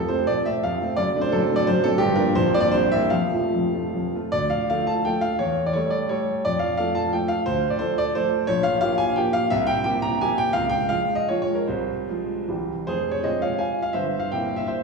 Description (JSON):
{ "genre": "classical, romantic triple-time dance for piano with dotted rhythms", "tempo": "138-186 BPM", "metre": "3/4", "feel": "rubato", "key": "F major, D minor from 4.3 s, F minor from 8.5 s", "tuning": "A4 = 440 Hz", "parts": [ { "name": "warm grand piano", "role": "solo", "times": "0.0-14.8 s", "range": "Bb0 to Bb5", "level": "-20 LUFS", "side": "equal", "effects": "none" } ], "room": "wet concert hall reverb, RT60 1.7 s", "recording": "heard from further back in the room", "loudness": "-20 LUFS", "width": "side -4 dB against mid", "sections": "0.0-4.3 A section; 4.3-12.9 B section; 12.9-14.8 C section", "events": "none", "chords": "0.0 F; 1.0 D7/F#; 2.0 Gm7; 2.4 Gm/Bb; 2.7 C7; 3.1 F; 4.3 Dm; 5.4 A7/E; 6.4 F69; 7.5 Dm; 8.5 Bbm6; 9.5 C5; 10.6 Db; 11.7 Fm/C; 12.5 C; 12.9 Fm; 14.0 C7/G" }